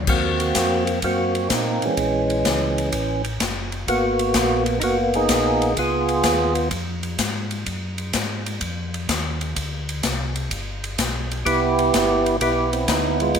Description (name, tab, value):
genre	soul jazz organ trio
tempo	127 BPM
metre	4/4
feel	swing 68% on 8ths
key	unclear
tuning	A4 = 439 Hz
part	mellow tonewheel organ	bass	0.0-13.4 s	Gb1 to Bb2	-27 LUFS	left 1 dB	chorus vibrato, slow rotary speaker
part	percussive tonewheel organ	melody	0.1-6.7, 11.5-13.4 s	Fb3 to Ab4	-19 LUFS	right 2 dB	slow rotary speaker, overdrive
part	swinging big-band drum kit	drums	0.1-13.4 s	crash cymbal, hi-hat, kick drum, ride cymbal, snare drum	-25 LUFS	left 2 dB	none
room	moderate large studio reverb, RT60 1.1 s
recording	minimal, uncompressed stereo recording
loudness	-19 LUFS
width	side -7 dB against mid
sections	0.1-13.4 A section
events	none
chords	0.1 Ebm69; 2.0 Bbm7b5; 2.9 A5; 3.9 Abm9; 5.8 Db9; 7.7 Gbsus2; 9.6 Csus2; 10.5 G; 11.5 Cmaj9